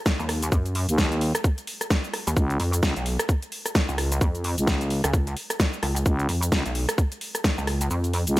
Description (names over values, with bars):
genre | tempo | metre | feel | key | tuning
bass house | 130 BPM | 4/4 | swing 59% on 16ths | unclear | A4 = 440 Hz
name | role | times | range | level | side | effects
big-room dance drum kit | drums | 0.1-8.4 s | cabasa, hi-hat, rim click, snare drum | -27 LUFS | equal | none
electronic kick drum | drums | 0.1-7.6 s | none | -22 LUFS | equal | overdrive
pulsing pluck wobble bass | bass | 0.2-8.2 s | Cb2 to Gb2 | -25 LUFS | equal | chorus, overdrive, sidechain pumping
growling FM bass | bass | 0.9-8.4 s | Db2 to Eb2 | -24 LUFS | equal | sidechain pumping
room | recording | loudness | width
little or no reverb | none | -22 LUFS | side -18 dB against mid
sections
0.0-8.4 A section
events
kick drops out 7.9-8.4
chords
0.0 Ebm; 2.4 Db